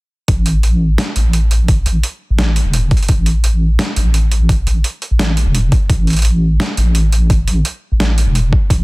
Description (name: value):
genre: half-time drum and bass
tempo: 171 BPM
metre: 4/4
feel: half-time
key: unclear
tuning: A4 = 439 Hz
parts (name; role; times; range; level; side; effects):
- deep soft wobble bass; bass; 0.3-8.8 s; E1 to A1; -13 LUFS; equal; chorus, tube saturation
- boom bap sampler-style drum kit; drums; 0.3-8.8 s; hi-hat, snare drum; -20 LUFS; right 1 dB; overdrive
- electronic kick drum; drums; 0.3-8.8 s; none; -13 LUFS; equal; overdrive
room: digital ambience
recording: dense, heavily limited modern master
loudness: -12 LUFS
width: side -24 dB against mid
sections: 0.3-8.8 A section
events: none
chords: none